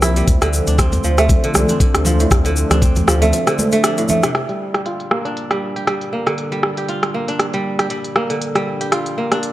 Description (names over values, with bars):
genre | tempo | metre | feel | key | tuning
afro house | 118 BPM | 4/4 | swing 56% on 16ths | G minor | A4 = 440 Hz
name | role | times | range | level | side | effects
dark analog pad | sustained chords | 0.0-9.5 s | F3 to C5 | -26 LUFS | left 1 dB | chorus, sidechain pumping
kora | arpeggios | 0.0-9.5 s | A2 to C5 | -20 LUFS | right 1 dB | sidechain pumping, low-pass filter, analog delay
warm sub bass | bass | 0.0-3.3 s | C2 to D2 | -18 LUFS | equal | sidechain pumping
afro-pop drum kit | drums | 0.0-9.5 s | hi-hat, rim click, toms | -20 LUFS | equal | low-pass filter on snare, small room reverb, low-pass filter on hats, low-pass filter on toms
congas | percussion | 0.0-4.2 s | none | -23 LUFS | right 1 dB | none
egg shaker | percussion | 0.0-4.3 s | none | -27 LUFS | left 2 dB | none
electronic kick drum | drums | 0.3-2.9 s | none | -15 LUFS | equal | small room reverb
room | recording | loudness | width
light reverb | dry, gritty hardware recording | -15 LUFS | side -15 dB against mid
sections
0.0-4.3 A section; 4.3-9.5 B section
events
filter sweep on drum 4.3-9.5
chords
0.3 Dm7; 4.3 Gm7